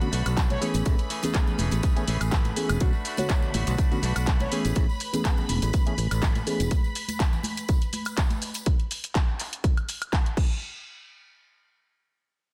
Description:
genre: filtered disco house.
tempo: 123 BPM.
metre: 4/4.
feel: swing 54% on 16ths.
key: A major.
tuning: A4 = 440 Hz.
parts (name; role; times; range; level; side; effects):
reed electric piano; accompaniment; 0.0-6.7 s; D3 to C#5; -32 LUFS; equal; phaser, vintage 12-bit sampler grit, sidechain pumping.
string machine, full ensemble; sustained chords; 0.0-8.7 s; B5; -40 LUFS; equal; ensemble chorus, vintage 12-bit sampler grit, sidechain pumping.
direct-recorded clean electric guitar; riff; 0.0-4.8 s; E3 to G#4; -38 LUFS; equal; sidechain pumping.
punchy analog drum machine; drums; 0.0-10.5 s; crash cymbal, handclaps, hi-hat, shaker, woodblock; -35 LUFS; equal; sidechain pumping on hats, sidechain pumping on perc, sidechain pumping on cymbals.
tambourine and congas; percussion; 0.0-8.6 s; none; -39 LUFS; equal; sidechain pumping on perc.
fingered electric bass; bass; 0.1-6.7 s; E1 to B1; -29 LUFS; equal; sidechain pumping.
electronic kick drum; drums; 0.4-10.5 s; none; -26 LUFS; equal; none.
analog synth brass; melody; 0.5-0.7, 4.4-4.6 s; C#5; -38 LUFS; equal; chorus, sidechain pumping, digital delay.
room: little or no reverb.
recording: dense, heavily limited modern master.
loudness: -26 LUFS.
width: mono.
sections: 0.0-10.6 A section; 10.6-12.5 B section.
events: drop 0.0-10.6.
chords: 0.0 Bm7; 0.6 Amaj7; 2.8 Bm7; 4.5 Amaj7; 6.7 N.C..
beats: 0.37 | 0.86 1.34 1.83 2.32 | 2.81 3.30 3.78 4.27 | 4.76 5.25 5.74 6.22 | 6.71 7.20 7.69 8.17 | 8.66 9.15 9.64 10.12.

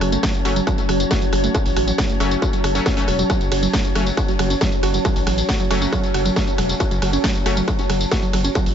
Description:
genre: driving peak-time techno.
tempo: 137 BPM.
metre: 4/4.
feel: straight.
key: F# minor.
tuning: A4 = 445 Hz.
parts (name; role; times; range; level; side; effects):
warbly dusty pluck; riff; 0.0-8.6 s; F#3 to F#4; -25 LUFS; right 3 dB; chorus, overdrive, cassette tape, sidechain pumping, ping-pong delay.
supersaw stab; stabs; 0.0-7.5 s; F#3 to C#4; -28 LUFS; left 3 dB; sidechain pumping, ping-pong delay.
gritty driven synth bass; bass; 0.0-8.7 s; E1 to A1; -23 LUFS; equal; sidechain pumping.
metallic inharmonic drone; drone; 0.0-8.7 s; F#3 to C#4; -28 LUFS; left 2 dB; chorus, built-in reverb, sidechain pumping.
techno drum kit; drums; 0.0-8.7 s; hi-hat, ride cymbal, rim click, snare drum, tambourine; -24 LUFS; equal; sidechain pumping on hats, sidechain pumping on perc, sidechain pumping on cymbals.
ethereal airy pad; texture; 0.0-8.7 s; F#4 to A5; -26 LUFS; right 1 dB; ensemble chorus, built-in reverb, sidechain pumping.
electronic kick drum; drums; 0.2-8.6 s; none; -22 LUFS; equal; distortion.
room: light reverb.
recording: nothing above 7.8 kHz.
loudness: -17 LUFS.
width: side -8 dB against mid.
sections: 0.0-8.7 A section.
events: none.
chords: 0.0 F#m.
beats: 0.23 0.67 1.11 | 1.55 1.98 2.42 2.86 | 3.30 3.73 4.17 4.61 | 5.05 5.49 5.92 6.36 | 6.80 7.24 7.68 8.12 | 8.55.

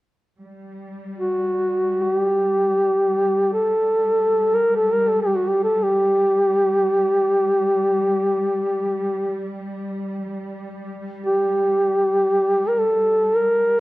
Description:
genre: caucasian folk, Caucasian lament.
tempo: free time.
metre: none.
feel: none.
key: G harmonic minor.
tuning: A4 = 439 Hz.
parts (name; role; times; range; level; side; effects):
warm studio cello section; drone; 0.4-13.8 s; G3; -30 LUFS; equal; none.
dark duduk; melody; 1.2-13.8 s; F#4 to Bb4; -17 LUFS; equal; none.
room: light reverb.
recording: worn, warbling old tape, cassette tape, warbly pitch drift.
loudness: -17 LUFS.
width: side -18 dB against mid.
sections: 0.4-13.8 A section.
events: none.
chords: none.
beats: free time.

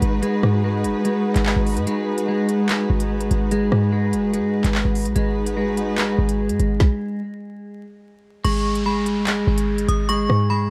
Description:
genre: hip hop, drill.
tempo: 146 BPM.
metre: 4/4.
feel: half-time.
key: G# minor.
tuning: A4 = 436 Hz.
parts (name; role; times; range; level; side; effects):
dark studio string section; sustained chords; 0.0-6.8 s; G#3 to B4; -29 LUFS; equal; none.
clean electric guitar; arpeggios; 0.0-10.7 s; G#3; -24 LUFS; equal; analog chorus, tape echo.
short 808-style bass; bass; 0.0-10.7 s; F#1 to G#2; -24 LUFS; equal; none.
drill drum kit; drums; 0.0-10.4 s; crash cymbal, handclaps, hi-hat, kick drum, rim click, snare drum; -26 LUFS; equal; none.
metallic FM bell; second line; 8.4-10.7 s; B5 to D#6; -28 LUFS; equal; chorus, tape echo.
downlifter; sound effects; 8.4-10.7 s; none; -38 LUFS; equal; none.
room: light reverb.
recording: dark, warm production, vinyl crackle.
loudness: -21 LUFS.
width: mono.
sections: 0.0-8.4 A section; 8.4-10.7 B section.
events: break 1.9-2.3; stop 6.8-8.4.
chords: 0.0 G#m7; 8.4 G#m.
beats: | 0.23 0.64 1.05 1.46 | 1.87 2.28 2.69 3.10 | 3.51 3.92 4.34 4.75 | 5.16 5.57 5.98 6.39 | 6.80 7.21 7.62 8.04 | 8.45 8.86 9.27 9.68 | 10.09 10.50.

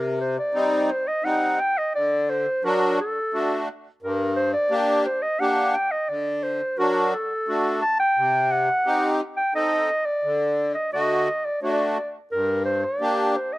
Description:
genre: klezmer.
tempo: 87 BPM.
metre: 3/4.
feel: straight.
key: D phrygian dominant.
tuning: A4 = 439 Hz.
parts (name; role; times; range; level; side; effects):
dark clarinet; melody; 0.0-13.6 s; A4 to A5; -22 LUFS; equal; none.
accordion; accompaniment; 0.0-13.4 s; G2 to A4; -24 LUFS; left 1 dB; light tremolo tuning, slapback echo.
room: little or no reverb.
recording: recorded outdoors, with no room sound.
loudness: -20 LUFS.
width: side -18 dB against mid.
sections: 0.0-13.6 A section.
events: none.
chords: 0.0 Cm; 1.9 D; 4.0 Gm; 6.1 D; 8.2 Cm; 10.2 D; 12.3 Gm.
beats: 0.55 1.25 | 1.95 2.64 3.34 | 4.03 4.72 5.41 | 6.10 6.79 7.48 | 8.18 8.87 9.56 | 10.25 10.94 11.63 | 12.32 13.02.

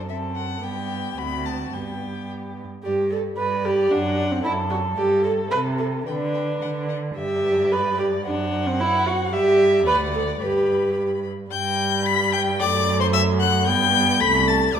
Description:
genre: quick classical-period movement for string quartet.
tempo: 111 BPM.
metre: 2/4.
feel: straight.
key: G major.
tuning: A4 = 442 Hz.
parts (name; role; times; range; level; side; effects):
warm violin; second line; 0.0-14.8 s; F#4 to B5; -28 LUFS; left 3 dB; none.
dark viola; accompaniment; 0.0-14.8 s; G3 to B4; -22 LUFS; right 1 dB; none.
warm cello; bass; 0.0-14.8 s; C2 to D3; -27 LUFS; right 3 dB; none.
rich violin; melody; 0.1-14.8 s; C5 to B6; -26 LUFS; left 8 dB; none.
room: wet recital hall reverb, RT60 1.5 s.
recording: minimal, uncompressed stereo recording.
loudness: -19 LUFS.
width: side -8 dB against mid.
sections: 0.0-2.8 A section; 2.8-11.5 B section; 11.5-14.8 B section.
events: none.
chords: 0.0 D7/F#; 0.6 G; 1.2 D7; 1.7 G; 2.8 G5; 3.9 D/F#; 5.0 G5; 5.5 Am/C; 6.1 G/D (rootless); 7.2 G5; 8.3 D9/F#; 9.3 G5; 9.9 D; 10.4 G; 12.6 D/F#; 13.7 G; 14.2 Am/C.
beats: 0.09 | 0.63 1.17 | 1.73 2.29 | 2.84 3.38 | 3.92 4.45 | 4.98 5.52 | 6.07 6.62 | 7.17 7.72 | 8.26 8.80 | 9.33 9.87 | 10.42 10.97 | 11.52 12.06 | 12.60 13.14 | 13.68 14.21 | 14.76.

